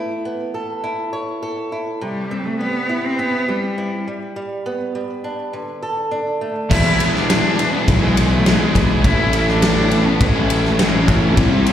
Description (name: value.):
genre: quiet-loud alternative rock.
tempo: 103 BPM.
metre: 4/4.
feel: straight.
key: unclear.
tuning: A4 = 445 Hz.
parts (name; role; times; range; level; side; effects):
fingerpicked swing-style acoustic guitar; arpeggios; 0.0-6.7 s; C3 to C#5; -24 LUFS; right 1 dB; slapback echo, digital delay.
clear cello; melody; 2.0-11.7 s; G3 to E4; -21 LUFS; left 1 dB; slapback echo, digital delay.
dark studio string section; sustained chords; 6.7-11.7 s; E4 to C6; -32 LUFS; equal; none.
distorted electric guitar; riff; 6.7-11.7 s; A2 to E4; -24 LUFS; left 11 dB; distortion, slapback echo.
distorted electric guitar; riff; 6.7-11.7 s; A2 to E4; -25 LUFS; right 9 dB; overdrive, slapback echo.
thick fuzz guitar; riff; 6.7-11.7 s; E2 to C4; -21 LUFS; equal; distortion, slapback echo.
fuzz fingered electric bass; bass; 6.7-11.6 s; A1 to A2; -18 LUFS; equal; overdrive.
huge arena drum kit; drums; 6.7-11.7 s; crash cymbal, kick drum, ride cymbal, snare drum; -18 LUFS; equal; none.
room: small room reverb.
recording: live gig heard through the venue's PA, recital hall reverb.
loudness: -16 LUFS.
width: side -10 dB against mid.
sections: 0.0-6.7 A section; 6.7-11.7 B section.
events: none.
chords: 0.0 Aadd9; 2.0 C; 4.1 G; 5.5 D5; 6.7 E7; 9.0 Aadd9.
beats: 0.25 0.84 1.43 | 2.01 2.60 3.19 3.78 | 4.37 4.95 5.54 6.12 | 6.71 7.29 7.87 8.46 | 9.04 9.62 10.21 10.79 | 11.37.